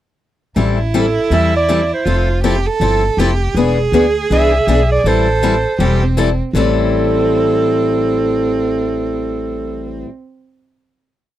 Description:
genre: acoustic string swing (jazz manouche)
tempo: 160 BPM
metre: 4/4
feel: swing 62% on 8ths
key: A minor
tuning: A4 = 440 Hz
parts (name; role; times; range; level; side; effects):
- clear violin; second line; 0.6-10.0 s; C4 to A4; -20 LUFS; right 5 dB; none
- picked steel-string acoustic guitar; accompaniment; 0.6-10.1 s; A2 to A4; -17 LUFS; left 5 dB; none
- upright bass; bass; 0.6-10.0 s; E1 to E2; -18 LUFS; equal; none
- breathy clarinet; melody; 1.0-10.1 s; G#4 to E5; -18 LUFS; right 3 dB; none
room: little or no reverb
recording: dry, close 1970s-style studio recording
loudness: -13 LUFS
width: side -12 dB against mid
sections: 0.6-6.5 A section; 6.5-9.5 final chord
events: none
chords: 0.6 Am7; 2.1 Fmaj7; 3.6 E7; 5.0 Am7

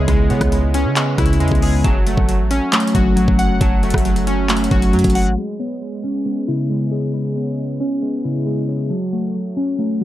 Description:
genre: hip hop, trap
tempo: 136 BPM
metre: 4/4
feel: half-time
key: C# minor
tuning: A4 = 440 Hz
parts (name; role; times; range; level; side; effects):
- glassy digital keys; accompaniment; 0.0-10.0 s; F#3 to F#5; -21 LUFS; equal; chorus, low-pass filter
- mellow electric guitar; arpeggios; 0.0-10.0 s; C#3 to B5; -21 LUFS; equal; phaser, low-pass filter, analog delay
- warm 808-style bass; bass; 0.0-5.4 s; F#1 to C#3; -20 LUFS; equal; none
- trap drum kit; drums; 0.1-5.3 s; handclaps, hi-hat, kick drum, rim click; -18 LUFS; equal; none
room: digital ambience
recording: dry, gritty hardware recording, low-pass filter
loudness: -15 LUFS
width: side -14 dB against mid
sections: 0.0-5.4 A section; 5.4-10.0 B section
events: filter sweep 5.4-10.0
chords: 0.0 C#m7; 1.8 F#m; 5.4 C#m7; 8.9 F#m

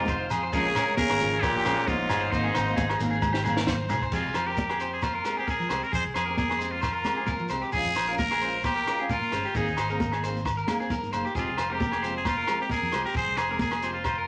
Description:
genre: highlife guitar band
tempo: 133 BPM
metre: 4/4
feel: straight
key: F minor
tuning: A4 = 440 Hz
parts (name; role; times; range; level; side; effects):
- trumpet with straight mute; melody; 0.0-14.3 s; Eb4 to C5; -31 LUFS; equal; none
- raspy tenor saxophone; second line; 0.0-3.0 s; Ab2 to Db3; -34 LUFS; equal; none
- fingerpicked steel-string acoustic guitar; accompaniment; 0.0-14.0 s; Eb3 to Ab4; -38 LUFS; equal; none
- tonewheel organ; sustained chords; 0.0-4.1 s; C5 to Bb5; -42 LUFS; equal; none
- electric guitar at the edge of break-up; arpeggios; 0.0-14.3 s; G4 to C5; -34 LUFS; equal; none
- fingered electric bass; bass; 0.0-14.2 s; F1 to F3; -37 LUFS; equal; none
- compact cocktail drum kit; drums; 0.1-14.2 s; crash cymbal, hi-hat, kick drum, rim click, snare drum, toms; -36 LUFS; equal; none
- congas; percussion; 0.1-14.1 s; none; -37 LUFS; equal; none
- shekere; percussion; 0.1-14.2 s; none; -43 LUFS; equal; none
- agogo bells; percussion; 0.3-14.2 s; none; -35 LUFS; equal; none
room: moderate large studio reverb, RT60 1.0 s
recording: none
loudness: -27 LUFS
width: mono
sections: 0.0-4.1 A section; 4.1-14.3 B section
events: drum fill 3.2-4.1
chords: 0.0 Fmadd9; 0.5 Bbm7; 2.3 Abadd9; 4.1 Fmadd9; 7.7 Bbm7; 9.5 Abadd9; 11.3 Fmadd9

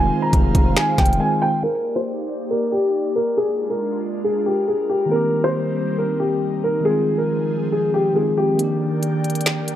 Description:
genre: hip hop, trap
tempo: 138 BPM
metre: 4/4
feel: half-time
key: Eb major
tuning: A4 = 440 Hz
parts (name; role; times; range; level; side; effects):
- dark concert grand piano; melody; 0.0-8.6 s; G4 to Bb5; -20 LUFS; left 1 dB; low-pass filter
- tine electric piano; accompaniment; 0.0-1.7, 5.1-9.8 s; Eb3 to G4; -22 LUFS; right 1 dB; fast stereo tremolo, low-pass filter
- airy breathy pad; sustained chords; 0.0-9.8 s; Eb3 to G5; -26 LUFS; equal; chorus, low-pass filter
- distorted 808-style bass; bass; 0.0-1.2 s; F1; -22 LUFS; equal; distortion
- trap drum kit; drums; 0.3-1.2, 8.6-9.8 s; finger snaps, hi-hat, kick drum, snare drum; -19 LUFS; equal; none
room: digital ambience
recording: dark, warm production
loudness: -18 LUFS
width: side -11 dB against mid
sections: 0.0-1.6 A section; 1.6-8.6 B section; 8.6-9.8 C section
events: break 1.2-1.6; filter sweep 1.6-8.6; kick muted 8.6-9.8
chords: 0.0 Fm7; 1.6 Ebmaj7; 3.4 Bb7; 5.1 Cm7; 6.9 Fm7; 8.6 Ebmaj7

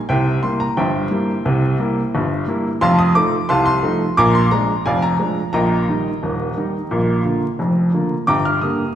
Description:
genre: ragtime piano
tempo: 88 BPM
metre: 2/4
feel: straight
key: unclear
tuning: A4 = 440 Hz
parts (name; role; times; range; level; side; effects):
- clear upright piano; solo; 0.1-8.9 s; Eb1 to F6; -16 LUFS; equal; none
room: wet recital hall reverb, RT60 1.8 s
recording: recorded in a church or concert hall, vinyl crackle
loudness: -15 LUFS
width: side -10 dB against mid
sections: 0.0-8.9 A section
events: none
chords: 0.1 C7; 2.8 F7; 4.2 Bb7; 5.5 Eb/Bb; 6.9 Bb; 8.3 Gm

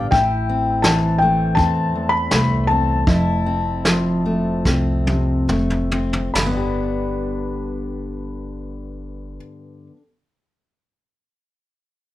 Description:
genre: acoustic folk duo or small band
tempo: 68-84 BPM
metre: 4/4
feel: straight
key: G mixolydian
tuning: A4 = 440 Hz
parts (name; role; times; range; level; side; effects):
- felt-muted upright piano; melody; 0.0-9.4 s; F5 to B5; -22 LUFS; left 3 dB; none
- fingerpicked steel-string acoustic guitar; accompaniment; 0.0-10.1 s; E2 to G4; -21 LUFS; left 1 dB; none
- upright bass; bass; 0.0-9.4 s; F1 to E2; -24 LUFS; right 1 dB; none
- vintage brush drum kit; drums; 0.1-6.6 s; kick drum, snare drum, splash cymbal, toms; -20 LUFS; right 1 dB; none
room: light reverb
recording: none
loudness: -17 LUFS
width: side -14 dB against mid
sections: 0.1-6.3 A section; 6.3-9.9 B section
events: slowing down 0.1-6.3; drum fill 4.6-6.3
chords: 0.1 Am; 3.1 Fmaj7; 6.3 G

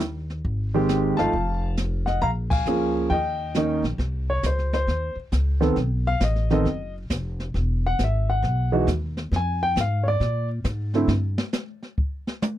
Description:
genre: jazz piano trio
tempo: 135 BPM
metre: 4/4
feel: swing 66% on 8ths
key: unclear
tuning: A4 = 438 Hz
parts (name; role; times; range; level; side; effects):
- upright bass; bass; 0.0-11.4 s; E1 to Bb2; -24 LUFS; equal; none
- jazz brush drum kit; drums; 0.0-12.6 s; brushed snare drum, hi-hat, kick drum, ride cymbal, snare drum, toms; -28 LUFS; equal; none
- warm upright piano; melody; 0.7-11.1 s; D3 to Bb5; -23 LUFS; equal; none
room: light reverb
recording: dry, close 1970s-style studio recording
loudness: -22 LUFS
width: side -12 dB against mid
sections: 0.0-4.0 A section; 4.0-12.6 B section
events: band accent 2.4; upright piano solo 4.0-12.6; drum solo 11.1-12.6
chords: 0.4 Abmaj7; 1.3 F; 2.2 Bbm7; 3.1 Eb7; 4.0 Cm; 5.8 B7; 7.5 Emaj9; 9.3 Fm; 10.2 Bb7; 11.1 N.C.

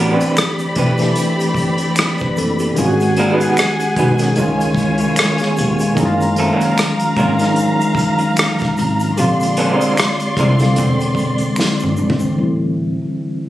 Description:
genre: R&B, neo-soul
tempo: 75 BPM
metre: 4/4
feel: swing 58% on 16ths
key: unclear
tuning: A4 = 441 Hz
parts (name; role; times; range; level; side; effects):
- electric guitar through a small old amp; second line; 0.0-10.5 s; Ab3 to B4; -18 LUFS; right 2 dB; tremolo
- tine electric piano; accompaniment; 0.0-13.5 s; D3 to B4; -17 LUFS; equal; overdrive, medium stereo tremolo, low-pass filter
- warm studio string section; sustained chords; 0.0-12.3 s; F#3 to C6; -21 LUFS; equal; none
- upright bass; bass; 0.0-13.0 s; D#1 to C#2; -20 LUFS; equal; none
- unplugged drum kit; drums; 0.2-12.3 s; hi-hat, kick drum, rim click, snare drum, toms; -21 LUFS; equal; none
- tube shaker and finger snaps; percussion; 0.2-12.4 s; none; -29 LUFS; left 1 dB; none
room: moderate studio reverb, RT60 0.6 s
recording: recorded on a phone in the room, studio reverb, compression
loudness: -14 LUFS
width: side -14 dB against mid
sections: 0.0-12.4 A section; 12.4-13.5 B section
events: drum fill 11.6-12.4; filter sweep on tine electric piano 12.4-13.5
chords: 0.0 Am11; 2.8 G#m7; 4.4 C#; 6.0 F#maj7; 9.2 Bb9; 10.8 E7b13; 12.4 Am7

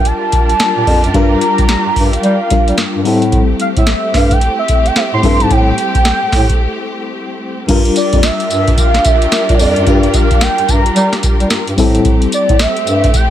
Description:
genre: R&B, new jack swing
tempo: 110 BPM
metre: 4/4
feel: swing 62% on 16ths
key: G dorian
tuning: A4 = 436 Hz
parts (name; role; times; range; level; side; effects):
- warm velvety synth lead; melody; 0.0-13.3 s; C#5 to C6; -16 LUFS; right 1 dB; chorus, ping-pong delay
- FM electric piano with tremolo; accompaniment; 0.0-13.3 s; G3 to Bb4; -18 LUFS; left 5 dB; none
- warm studio string section; sustained chords; 0.0-13.3 s; G3 to Bb4; -21 LUFS; equal; none
- booming analog drum machine; drums; 0.1-13.3 s; crash cymbal, hi-hat, kick drum, snare drum, tambourine; -13 LUFS; equal; none
- dark bass clarinet; bass; 0.8-13.1 s; F2 to G3; -16 LUFS; equal; none
room: little or no reverb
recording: none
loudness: -10 LUFS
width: side -11 dB against mid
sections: 0.0-7.7 A section; 7.7-13.3 B section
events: break 6.6-7.7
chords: 0.0 Gm7; 3.0 Am7; 7.7 Gm7; 11.8 Am7

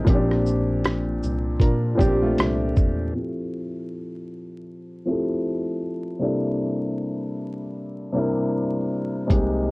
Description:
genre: lo-fi hip hop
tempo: 78 BPM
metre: 4/4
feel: swing 59% on 16ths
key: F major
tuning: A4 = 440 Hz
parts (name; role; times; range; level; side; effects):
- dark upright piano; accompaniment; 0.0-9.7 s; Bb2 to Bb4; -24 LUFS; left 1 dB; cassette tape, low-pass filter
- mellow tine electric piano; bass; 0.1-3.1, 9.3-9.7 s; Bb1 to Bb2; -25 LUFS; equal; medium stereo tremolo, transformer saturation
- dusty soul sampler-style drum kit; drums; 0.1-3.0, 9.3-9.5 s; hi-hat, kick drum, rim click, shaker; -20 LUFS; equal; none
- nylon-string guitar; second line; 1.6-3.1 s; A3 to Bb4; -28 LUFS; right 3 dB; low-pass filter, analog delay
room: light reverb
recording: worn, warbling old tape, cassette tape, vinyl crackle, warbly pitch drift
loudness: -21 LUFS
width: side -24 dB against mid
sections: 0.0-3.1 A section; 3.1-9.7 B section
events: none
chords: 0.1 Bb69; 3.1 Fmaj7; 6.2 C13

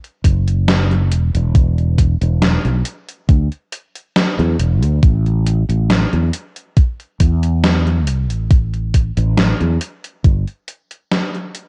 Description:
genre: vaporwave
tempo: 69 BPM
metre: 4/4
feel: straight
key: A dorian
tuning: A4 = 440 Hz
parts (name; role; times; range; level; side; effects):
- gated 80s digital drum machine; drums; 0.0-11.7 s; hi-hat, snare drum; -20 LUFS; equal; gated reverb, gated reverb snare, overdrive, vintage 12-bit sampler grit
- fretless electric bass; bass; 0.2-10.4 s; E1 to E2; -18 LUFS; equal; tube saturation, lush chorus
- electronic kick drum; drums; 0.2-10.4 s; none; -14 LUFS; equal; overdrive, vintage 12-bit sampler grit
room: little or no reverb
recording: cassette tape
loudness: -16 LUFS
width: mono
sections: 0.0-11.7 A section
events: fade-out 9.7-11.7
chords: none

